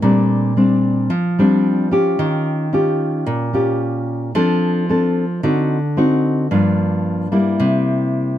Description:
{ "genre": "bossa nova", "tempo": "111 BPM", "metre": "4/4", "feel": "straight", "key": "unclear", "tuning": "A4 = 441 Hz", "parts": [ { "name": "nylon-string guitar", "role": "solo", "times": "0.0-8.4 s", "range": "G2 to A4", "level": "-15 LUFS", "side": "equal", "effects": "none" } ], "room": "light reverb", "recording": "close, detailed microphones", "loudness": "-15 LUFS", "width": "side -12 dB against mid", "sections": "0.0-8.4 A section", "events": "none", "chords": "0.0 Bb69; 2.2 Eb9; 4.3 F6; 5.4 D7b9; 6.5 Gm7; 7.6 C7" }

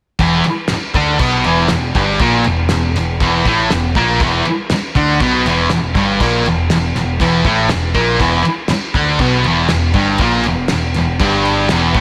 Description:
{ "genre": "garage rock duo or trio", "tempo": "120 BPM", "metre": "4/4", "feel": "straight", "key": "E minor", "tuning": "A4 = 444 Hz", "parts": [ { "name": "thick fuzz guitar", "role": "riff", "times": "0.2-12.0 s", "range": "E2 to D4", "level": "-16 LUFS", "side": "equal", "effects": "distortion" }, { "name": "growling picked electric bass", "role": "bass", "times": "0.2-12.0 s", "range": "E1 to D2", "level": "-22 LUFS", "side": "equal", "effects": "overdrive, tube saturation" }, { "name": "cloth-damped thuddy drum kit", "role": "drums", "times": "0.2-12.0 s", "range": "crash cymbal, kick drum, snare drum", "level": "-22 LUFS", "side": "equal", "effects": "none" } ], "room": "light reverb, small room ambience", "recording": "none", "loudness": "-15 LUFS", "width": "mono", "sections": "0.2-12.0 A section", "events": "none", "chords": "0.2 Em" }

